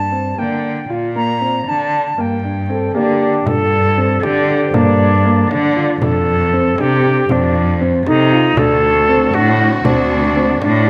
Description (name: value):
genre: contemporary instrumental, chamber music in an uneven meter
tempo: 234 BPM (eighths)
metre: 5/8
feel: straight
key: G minor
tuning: A4 = 441 Hz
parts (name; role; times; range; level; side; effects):
- silver concert flute; melody; 0.0-10.9 s; D4 to Bb5; -19 LUFS; equal; none
- dark grand piano; arpeggios; 0.0-10.8 s; Bb3 to F4; -22 LUFS; equal; none
- rich cello; bass; 0.0-10.9 s; D2 to D3; -19 LUFS; equal; none
- warm French horn; second line; 2.7-3.5 s; G4 to A4; -22 LUFS; equal; none
- frame drum; percussion; 3.5-10.9 s; none; -24 LUFS; equal; none
- large celesta; texture; 3.5-8.8 s; F4 to D5; -28 LUFS; equal; none
- warm studio string section; sustained chords; 8.6-10.9 s; D3 to F#4; -28 LUFS; equal; none
room: moderate recital hall reverb, RT60 1.4 s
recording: none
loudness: -15 LUFS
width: mono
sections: 0.0-3.5 A section; 3.5-10.9 B section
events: none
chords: 0.0 Gm; 0.9 Bb; 2.2 Gm; 3.5 Gm7; 6.0 F; 8.6 D7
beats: 0.13 0.39 0.64 | 0.90 1.16 1.41 1.67 1.93 | 2.18 2.44 2.70 2.95 3.21 | 3.47 3.72 3.98 4.24 4.49 | 4.75 5.00 5.26 5.51 5.77 | 6.03 6.28 6.54 6.79 7.05 | 7.31 7.56 7.82 8.07 8.33 | 8.58 8.84 9.10 9.35 9.61 | 9.86 10.12 10.37 10.63 10.88